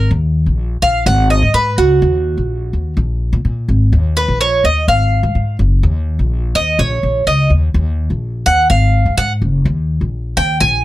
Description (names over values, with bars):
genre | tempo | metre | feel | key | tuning
latin | 126 BPM | 4/4 | straight | Eb minor | A4 = 439 Hz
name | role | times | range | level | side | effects
Cuban tres | arpeggios | 0.0-10.8 s | Gb4 to Ab5 | -14 LUFS | right 2 dB | none
upright bass | bass | 0.0-10.8 s | Gb1 to Bb2 | -14 LUFS | left 1 dB | none
room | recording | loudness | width
light reverb | none | -12 LUFS | side -15 dB against mid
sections
0.1-10.8 A section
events
Cuban tres solo 0.1-10.8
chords
0.1 Eb5; 1.1 Abm7; 2.0 Ebm; 3.0 Absus2; 3.9 Eb5; 4.9 Fm; 5.8 Eb5; 6.8 Bbsus4; 7.7 Eb5; 8.7 Gbsus2; 9.7 Eb5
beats
| 0.10 0.58 1.06 1.54 | 2.02 2.50 2.97 3.45 | 3.93 4.41 4.88 5.36 | 5.84 6.32 6.79 7.27 | 7.75 8.22 8.70 9.18 | 9.65 10.13 10.61